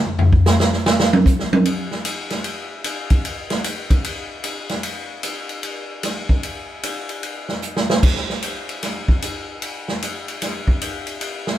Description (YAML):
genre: jazz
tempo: 151 BPM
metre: 4/4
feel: swing 65% on 8ths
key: none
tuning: none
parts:
  - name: swinging big-band drum kit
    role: drums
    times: 0.1-11.5 s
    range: crash cymbal, hi-hat, kick drum, ride cymbal, snare drum, toms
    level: -18 LUFS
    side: equal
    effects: none
room: moderate stone room reverb, RT60 1.2 s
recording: band playing live in one room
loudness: -19 LUFS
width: side -12 dB against mid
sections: 0.0-1.7 A section; 1.7-11.6 B section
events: drum solo 0.0-1.7; drum fill 7.6-8.0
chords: none